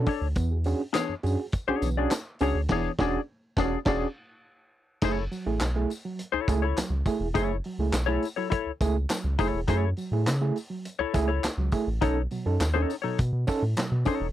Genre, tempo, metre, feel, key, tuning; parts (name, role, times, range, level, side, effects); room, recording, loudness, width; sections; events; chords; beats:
funk; 103 BPM; 4/4; straight; F# minor; A4 = 440 Hz
overdriven reed electric piano; stabs; 0.0-14.3 s; B2 to A4; -30 LUFS; right 4 dB; fast tremolo
round analog bass; bass; 0.0-14.3 s; E1 to C#3; -27 LUFS; equal
semi-hollow electric guitar; accompaniment; 0.1-14.3 s; D4 to D5; -28 LUFS; left 10 dB; analog chorus
vintage drum kit; drums; 0.1-14.2 s; crash cymbal, handclaps, hi-hat, kick drum, snare drum; -28 LUFS; equal
tambourine; percussion; 0.4-14.2 s; -44 LUFS; left 6 dB
little or no reverb; dry, close 1970s-style studio recording; -25 LUFS; side -12 dB against mid
0.0-5.0 A section; 5.0-14.3 B section
band accent 2.7-5.0
0.4 E13; 5.0 F#m7; 12.0 B9
| 0.36 0.95 1.53 2.11 | 2.69 3.28 3.86 4.44 | 5.03 5.61 6.19 6.77 | 7.35 7.94 8.52 9.10 | 9.68 10.27 10.85 11.43 | 12.02 12.60 13.18 13.77